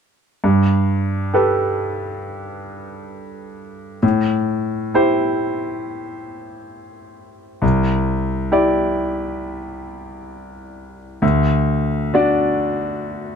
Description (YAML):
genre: classical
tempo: 67 BPM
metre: 4/4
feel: rubato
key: G major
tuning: A4 = 438 Hz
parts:
  - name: clear grand piano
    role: accompaniment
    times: 0.4-13.4 s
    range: C2 to D5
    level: -18 LUFS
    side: equal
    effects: none
room: light reverb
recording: close, detailed microphones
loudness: -16 LUFS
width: side -7 dB against mid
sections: 0.4-13.4 A section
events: none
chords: 0.4 Gadd9; 4.0 Am7; 7.6 Cadd9; 11.2 D